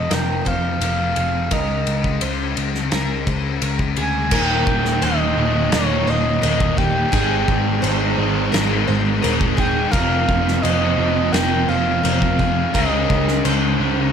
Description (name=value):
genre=rock, shoegaze and dream pop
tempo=85 BPM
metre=4/4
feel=straight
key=Eb mixolydian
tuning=A4 = 440 Hz
part: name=reedy FM lead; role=melody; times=0.0-13.4 s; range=Db5 to Ab5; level=-24 LUFS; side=right 1 dB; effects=chorus, tape echo
part: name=picked plugged-in twelve-string acoustic guitar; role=arpeggios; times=0.0-14.1 s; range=G4 to C5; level=-28 LUFS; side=right 1 dB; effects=wide subtle chorus, tape echo
part: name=overdriven electric guitar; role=riff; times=0.0-14.1 s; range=Eb2 to Ab4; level=-26 LUFS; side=right 11 dB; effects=reverse reverb
part: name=thick fuzz guitar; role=riff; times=0.0-14.1 s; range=Eb2 to Db4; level=-24 LUFS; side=left 9 dB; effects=distortion, ensemble chorus
part: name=vintage muted picked electric bass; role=bass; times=0.0-14.1 s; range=Eb1 to F2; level=-23 LUFS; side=equal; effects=none
part: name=loose indie drum kit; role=drums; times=0.1-13.6 s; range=crash cymbal, kick drum, ride cymbal, snare drum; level=-23 LUFS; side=left 1 dB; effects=none
part: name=overdriven electric guitar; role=riff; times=4.3-14.1 s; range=Eb2 to Db4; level=-25 LUFS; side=right 1 dB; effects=none
room=light reverb, small room ambience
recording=none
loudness=-16 LUFS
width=side -7 dB against mid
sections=0.0-4.3 A section; 4.3-14.1 B section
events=none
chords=0.0 F7sus4; 1.5 Dbsus2; 4.3 Eb; 7.1 Abmaj7; 9.9 F7sus4; 12.7 Dbsus2